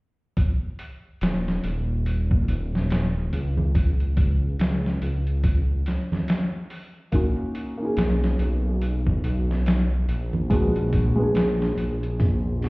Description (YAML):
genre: trip hop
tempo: 71 BPM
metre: 4/4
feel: swing 59% on 16ths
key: unclear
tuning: A4 = 440 Hz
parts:
  - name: trip hop sampler-style drum kit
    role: drums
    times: 0.4-12.7 s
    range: hi-hat, kick drum, snare drum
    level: -23 LUFS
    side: equal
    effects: overdrive
  - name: dark detuned saw bass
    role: bass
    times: 1.2-12.7 s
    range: Eb1 to Db2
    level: -23 LUFS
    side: equal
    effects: none
  - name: egg shaker and congas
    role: percussion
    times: 1.2-11.6 s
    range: none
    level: -29 LUFS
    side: right 2 dB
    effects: none
  - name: felt-muted upright piano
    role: accompaniment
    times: 7.1-12.7 s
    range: Ab3 to Ab4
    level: -26 LUFS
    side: equal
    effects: tremolo, tape echo
room: little or no reverb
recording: heard muffled through a wall, stone room reverb, EQ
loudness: -21 LUFS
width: side -24 dB against mid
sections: 0.4-12.7 A section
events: none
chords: 0.4 Dbsus2/Eb; 3.8 N.C.; 7.1 Bmaj7; 10.5 Bb7b9b13